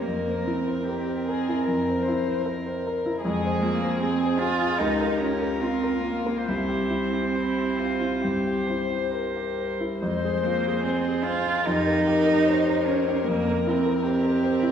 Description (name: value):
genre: classical, slow romantic movement for piano quartet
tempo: 67-78 BPM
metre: 4/4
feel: rubato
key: unclear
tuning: A4 = 441 Hz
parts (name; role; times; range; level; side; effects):
- dark violin; melody; 0.0-14.7 s; E4 to C5; -30 LUFS; left 7 dB; none
- warm cello; second line; 0.0-14.7 s; Ab3 to F4; -25 LUFS; right 2 dB; none
- rich viola; accompaniment; 0.0-14.7 s; Ab4 to C5; -33 LUFS; right 1 dB; none
- warm grand piano; accompaniment; 0.0-14.7 s; C2 to Db5; -28 LUFS; equal; none
room: wet concert hall reverb, RT60 2.0 s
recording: heard from further back in the room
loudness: -22 LUFS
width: side -8 dB against mid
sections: 0.0-14.7 A section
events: none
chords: 0.0 C7/F; 3.2 Fm; 4.8 Bbm/Db; 6.5 C; 10.0 Fm; 11.7 Gm7b5/F; 13.3 C7/F